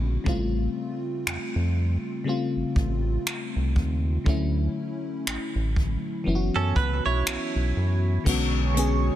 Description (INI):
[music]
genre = contemporary R&B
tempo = 60 BPM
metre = 4/4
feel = swing 58% on 16ths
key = unclear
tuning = A4 = 439 Hz
[part]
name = FM electric piano with soft pad layer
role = accompaniment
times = 0.0-9.2 s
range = C#3 to G#4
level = -28 LUFS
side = left 2 dB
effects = chorus
[part]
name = round analog bass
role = bass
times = 0.0-9.1 s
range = F#1 to F#2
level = -25 LUFS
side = equal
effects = none
[part]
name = jazz brush drum kit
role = drums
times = 0.3-9.0 s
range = crash cymbal, finger snaps, hi-hat, kick drum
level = -28 LUFS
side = equal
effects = none
[part]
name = direct-recorded clean electric guitar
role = arpeggios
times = 6.6-8.2 s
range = C#4 to C#5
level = -28 LUFS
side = right 7 dB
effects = wide subtle chorus, tape echo
[part]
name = chorused pulse-width pad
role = sustained chords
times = 8.3-9.2 s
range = G#4 to C#6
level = -32 LUFS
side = right 4 dB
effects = none
[sound]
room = studio reverb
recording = dense, heavily limited modern master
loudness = -23 LUFS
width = side -12 dB against mid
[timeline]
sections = 0.0-8.3 A section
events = none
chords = 0.3 A7alt; 4.3 Dmaj9; 6.3 F#7sus4; 8.3 Bm69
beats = | 0.26 1.26 2.26 3.26 | 4.26 5.26 6.26 7.26 | 8.26